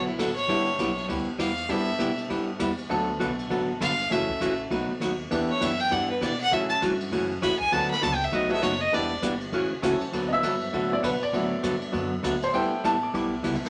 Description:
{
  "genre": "country, western swing",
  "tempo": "199 BPM",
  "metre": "4/4",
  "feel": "swing 60% on 8ths",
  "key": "D major",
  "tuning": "A4 = 439 Hz",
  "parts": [
    { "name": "rich fiddle", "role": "melody", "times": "0.0-9.2 s", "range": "E4 to B5", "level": "-29 LUFS", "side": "equal", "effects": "none" },
    { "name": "archtop guitar, miked and amplified", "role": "accompaniment", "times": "0.0-13.6 s", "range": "B2 to A4", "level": "-30 LUFS", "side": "equal", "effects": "none" },
    { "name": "clear upright piano", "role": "accompaniment", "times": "0.0-13.7 s", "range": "E3 to D6", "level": "-32 LUFS", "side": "equal", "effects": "none" },
    { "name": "upright bass", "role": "bass", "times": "0.0-13.7 s", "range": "E1 to B2", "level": "-39 LUFS", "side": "equal", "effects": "none" },
    { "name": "jazz brush drum kit", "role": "drums", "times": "0.2-13.7 s", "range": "hi-hat, kick drum, ride cymbal, snare drum", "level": "-39 LUFS", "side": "equal", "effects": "none" }
  ],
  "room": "wet studio reverb, RT60 0.7 s",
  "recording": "none",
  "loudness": "-26 LUFS",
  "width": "mono",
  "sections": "0.0-10.1 A section; 10.1-13.7 A section",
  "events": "fiddle solo 0.0-10.1; upright piano solo 10.1-13.7",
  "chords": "0.5 G6; 2.9 D6; 4.1 F#m7; 4.7 B7; 5.3 Em7; 6.5 A6; 7.7 D6; 8.3 B7; 8.9 Em7; 9.5 A6; 10.1 D6; 12.5 G6"
}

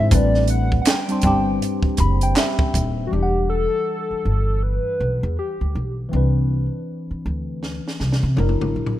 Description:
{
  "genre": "R&B, neo-soul",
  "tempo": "80 BPM",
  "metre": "4/4",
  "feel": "swing 61% on 16ths",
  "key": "unclear",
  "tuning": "A4 = 440 Hz",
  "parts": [
    { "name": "hollow square lead", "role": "melody", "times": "0.0-5.9 s", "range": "F#4 to G5", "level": "-24 LUFS", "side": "left 1 dB", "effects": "chorus, slapback echo" },
    { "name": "tine electric piano", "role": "accompaniment", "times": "0.0-9.0 s", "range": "E3 to B5", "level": "-25 LUFS", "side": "left 2 dB", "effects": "phaser" },
    { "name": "upright bass", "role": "bass", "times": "0.0-9.0 s", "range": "Eb1 to C3", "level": "-20 LUFS", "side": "equal", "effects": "none" },
    { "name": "compact cocktail drum kit", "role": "drums", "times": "0.1-3.0, 7.6-9.0 s", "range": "handclaps, hi-hat, kick drum, snare drum, toms", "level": "-22 LUFS", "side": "right 1 dB", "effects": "none" }
  ],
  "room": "small room ambience",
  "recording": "rough home demo mix",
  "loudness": "-18 LUFS",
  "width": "side -13 dB against mid",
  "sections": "0.0-3.1 A section; 3.1-9.0 B section",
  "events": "tine electric piano fill 1.6-3.1; drum fill 7.6-9.0",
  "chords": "0.1 Am11; 3.1 Em9; 6.1 Cmaj9; 8.4 F#7b13"
}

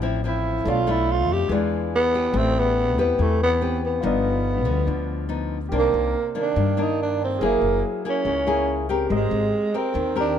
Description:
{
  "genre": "bossa nova",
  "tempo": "142 BPM",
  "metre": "4/4",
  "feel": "straight",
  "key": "C minor from 5.7 s",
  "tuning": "A4 = 441 Hz",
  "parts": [
    { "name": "clear concert grand piano", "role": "accompaniment", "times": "0.0-10.4 s", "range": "F4 to F5", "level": "-32 LUFS", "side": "right 2 dB", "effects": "none" },
    { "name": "nylon-string guitar", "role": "accompaniment", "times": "0.0-10.4 s", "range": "G2 to B4", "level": "-25 LUFS", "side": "left 4 dB", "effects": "none" },
    { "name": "upright bass", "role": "bass", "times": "0.0-10.4 s", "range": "F#1 to G2", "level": "-26 LUFS", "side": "left 1 dB", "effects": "none" },
    { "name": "growling tenor saxophone", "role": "melody", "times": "0.3-10.4 s", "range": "Ab3 to G4", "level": "-23 LUFS", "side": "right 2 dB", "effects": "none" }
  ],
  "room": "light reverb",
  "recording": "minimal, uncompressed stereo recording, faint mains hum",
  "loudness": "-20 LUFS",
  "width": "side -9 dB against mid",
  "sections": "0.0-5.7 A section; 5.7-10.4 B section",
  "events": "none",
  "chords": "0.0 Dm9; 0.7 Bm7b5; 1.5 E7b9; 2.3 Am9; 4.0 G7b13; 5.7 Cm9; 7.4 F#9; 9.1 Abmaj9"
}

